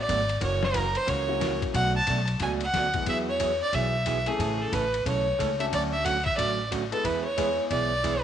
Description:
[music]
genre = country, western swing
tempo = 181 BPM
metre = 4/4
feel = swing 62% on 8ths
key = unclear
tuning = A4 = 440 Hz
[part]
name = clear fiddle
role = melody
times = 0.0-8.2 s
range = G#4 to A5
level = -26 LUFS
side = right 1 dB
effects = none
[part]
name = upright bass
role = bass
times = 0.0-8.2 s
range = F#1 to E2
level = -31 LUFS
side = left 1 dB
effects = none
[part]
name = vintage hollow-body jazz guitar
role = accompaniment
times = 0.1-8.1 s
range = B2 to A4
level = -32 LUFS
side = right 8 dB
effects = none
[part]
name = trip hop sampler-style drum kit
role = drums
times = 0.1-8.1 s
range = hi-hat, kick drum, ride cymbal, snare drum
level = -34 LUFS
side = left 5 dB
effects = none
[part]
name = bright upright piano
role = accompaniment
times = 1.3-7.9 s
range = E3 to B4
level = -34 LUFS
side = left 11 dB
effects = none
[sound]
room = moderate echo chamber reverb, RT60 1.4 s, small room ambience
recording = 1960s-style stereo with parts hard left and right, nothing above 10.3 kHz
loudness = -24 LUFS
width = side -9 dB against mid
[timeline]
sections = 0.0-8.2 A section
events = none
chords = 0.4 F#7; 1.7 Bm7; 3.1 Eadd9; 4.4 A; 5.7 Dmaj7; 7.0 E

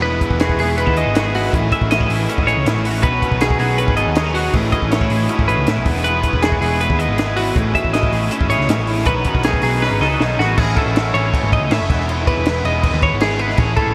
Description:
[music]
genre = math rock and midwest emo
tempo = 159 BPM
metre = 4/4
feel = straight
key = E major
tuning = A4 = 440 Hz
[part]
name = twangy electric guitar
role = accompaniment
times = 0.0-10.6 s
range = E2 to A4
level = -28 LUFS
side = equal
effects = analog chorus
[part]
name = twelve-string electric guitar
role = arpeggios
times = 0.0-13.9 s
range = F#4 to E5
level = -22 LUFS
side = equal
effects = analog delay
[part]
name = biting overdriven guitar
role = riff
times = 0.0-13.9 s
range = A2 to F#4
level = -26 LUFS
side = equal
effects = none
[part]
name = hollow-body short-scale picked electric bass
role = bass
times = 0.0-13.9 s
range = E1 to A2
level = -23 LUFS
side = equal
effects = none
[part]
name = compact cocktail drum kit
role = drums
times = 0.2-13.9 s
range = crash cymbal, hi-hat, kick drum, snare drum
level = -23 LUFS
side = equal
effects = none
[sound]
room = wet huge ambient reverb, RT60 7.8 s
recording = dreamy mix soaked in reverb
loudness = -17 LUFS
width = mono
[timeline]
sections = 0.0-10.6 A section; 10.6-13.9 B section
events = drum fill 9.8-10.6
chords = 0.0 Emaj7; 1.5 Amaj7; 3.0 Badd9; 4.5 Amaj7; 5.9 Emaj7; 7.6 Amaj7; 9.1 Badd9; 10.6 Amaj7; 11.9 Emaj7

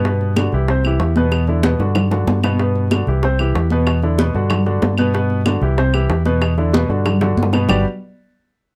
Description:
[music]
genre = Afro-Cuban jazz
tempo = 188 BPM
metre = 4/4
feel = straight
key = G major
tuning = A4 = 440 Hz
[part]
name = warm concert grand piano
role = accompaniment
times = 0.0-7.8 s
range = B2 to D5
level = -23 LUFS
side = equal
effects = none
[part]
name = fingered electric bass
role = bass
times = 0.0-7.8 s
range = G1 to G2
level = -20 LUFS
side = equal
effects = none
[part]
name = congas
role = percussion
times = 0.0-7.8 s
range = none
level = -24 LUFS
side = equal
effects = none
[part]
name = bongos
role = percussion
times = 0.1-7.8 s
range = none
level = -27 LUFS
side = equal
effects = none
[part]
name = claves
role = percussion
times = 0.4-7.8 s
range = none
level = -29 LUFS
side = equal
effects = none
[sound]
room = little or no reverb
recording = close, detailed microphones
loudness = -17 LUFS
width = mono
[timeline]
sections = 0.0-7.7 A section; 7.7-8.8 B section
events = drum fill 1.3-2.6, 7.2-7.7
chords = 0.0 Gmaj7; 0.7 C; 1.3 Em7; 2.0 Gmaj7; 3.2 C; 3.9 Em7; 4.5 Gmaj7; 5.8 C; 6.4 Em7; 7.1 Gmaj7

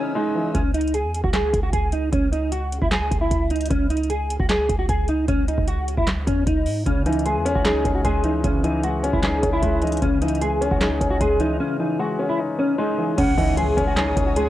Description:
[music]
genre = hip hop, trap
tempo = 152 BPM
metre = 4/4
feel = half-time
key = C# minor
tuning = A4 = 445 Hz
[part]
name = mellow electric guitar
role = melody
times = 0.0-14.5 s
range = C#4 to G#4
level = -23 LUFS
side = right 1 dB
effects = ensemble chorus, low-pass filter, cassette tape
[part]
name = dark baby grand piano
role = accompaniment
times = 0.0-0.6, 6.9-14.5 s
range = C#3 to D#4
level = -23 LUFS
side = left 3 dB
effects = low-pass filter, cassette tape
[part]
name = dark studio string section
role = sustained chords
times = 0.0-0.5, 13.2-14.5 s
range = C#5 to E6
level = -38 LUFS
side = equal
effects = cassette tape
[part]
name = hard-hitting 808-style bass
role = bass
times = 0.5-14.5 s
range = C#2 to G#2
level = -25 LUFS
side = equal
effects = none
[part]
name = booming analog drum machine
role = drums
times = 0.5-14.5 s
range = crash cymbal, handclaps, hi-hat, kick drum, snare drum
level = -24 LUFS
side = equal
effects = overdrive, cassette tape
[part]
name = reedy silver concert flute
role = second line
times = 13.2-13.5 s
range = F#5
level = -29 LUFS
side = right 4 dB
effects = cassette tape, tape echo
[part]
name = impact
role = sound effects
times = 13.2-14.5 s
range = none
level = -33 LUFS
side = right 1 dB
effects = none
[sound]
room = little or no reverb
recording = home recording on cassette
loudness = -19 LUFS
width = side -14 dB against mid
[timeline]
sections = 0.5-13.2 A section; 13.2-14.5 B section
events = break 0.0-0.5, 11.6-13.2; impact 13.2-14.5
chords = 0.0 C#madd9; 0.5 C#5; 3.7 C#madd9

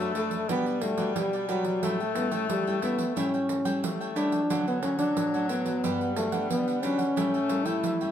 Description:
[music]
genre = samba and choro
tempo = 90 BPM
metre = 4/4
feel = straight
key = unclear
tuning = A4 = 440 Hz
[part]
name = breathy trombone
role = melody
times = 0.0-8.1 s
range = F#3 to E4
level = -27 LUFS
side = equal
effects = none
[part]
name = breathy tenor saxophone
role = second line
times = 0.0-8.1 s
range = F3 to A3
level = -33 LUFS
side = left 7 dB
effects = none
[part]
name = cavaquinho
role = accompaniment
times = 0.0-8.1 s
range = D4 to G5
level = -37 LUFS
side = right 7 dB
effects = none
[part]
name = nylon-string guitar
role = accompaniment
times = 0.0-8.1 s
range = F#2 to F#4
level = -35 LUFS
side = left 3 dB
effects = none
[part]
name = pandeiro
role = percussion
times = 0.0-8.1 s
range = none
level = -34 LUFS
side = right 6 dB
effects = none
[sound]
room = moderate studio reverb, RT60 0.6 s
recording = none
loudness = -25 LUFS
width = side -9 dB against mid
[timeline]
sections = 0.0-8.1 A section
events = none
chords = 0.5 Gmaj7/B; 1.8 A7; 4.5 Dmaj7; 5.8 Gmaj7; 7.2 A7

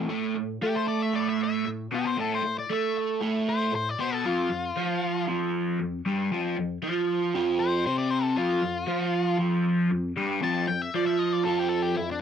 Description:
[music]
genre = rock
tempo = 116 BPM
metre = 4/4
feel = straight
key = A minor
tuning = A4 = 441 Hz
[part]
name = raw garage guitar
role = riff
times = 0.0-12.2 s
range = F2 to A4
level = -25 LUFS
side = right 1 dB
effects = overdrive, phaser, cassette tape
[part]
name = octave-fuzz lead guitar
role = melody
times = 0.6-12.2 s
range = D4 to A5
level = -30 LUFS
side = left 5 dB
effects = distortion, cassette tape
[sound]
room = light reverb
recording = home recording on cassette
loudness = -24 LUFS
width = side -8 dB against mid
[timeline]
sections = 0.1-12.2 A section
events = lead electric guitar solo 0.1-12.2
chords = 0.1 Amadd9; 4.2 F5

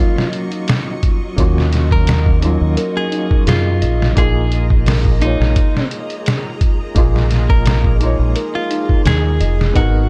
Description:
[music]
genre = trip hop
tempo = 86 BPM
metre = 4/4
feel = swing 54% on 16ths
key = unclear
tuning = A4 = 438 Hz
[part]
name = clean electric guitar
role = melody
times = 0.0-10.1 s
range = Eb4 to Bb4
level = -26 LUFS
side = equal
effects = vintage 12-bit sampler grit, tape echo
[part]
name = felt-muted upright piano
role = accompaniment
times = 0.0-10.1 s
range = Gb3 to Db5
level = -26 LUFS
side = equal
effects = tremolo, vintage 12-bit sampler grit
[part]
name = string machine, cellos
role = sustained chords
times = 0.0-10.1 s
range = Gb3 to Db6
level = -31 LUFS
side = equal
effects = phaser, ensemble chorus
[part]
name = celesta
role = arpeggios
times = 0.0-10.1 s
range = Eb4 to Eb5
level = -28 LUFS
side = equal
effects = tape echo
[part]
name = trip hop sampler-style drum kit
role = drums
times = 0.2-9.9 s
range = hi-hat, kick drum, snare drum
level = -18 LUFS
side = equal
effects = none
[part]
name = deep dub fingered electric bass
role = bass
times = 1.4-10.1 s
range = F1 to Gb2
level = -18 LUFS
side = equal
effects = tube saturation
[sound]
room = little or no reverb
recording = dark, warm production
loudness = -15 LUFS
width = mono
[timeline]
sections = 0.0-10.1 A section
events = none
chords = 0.0 Ebm7; 4.2 Bb7sus4

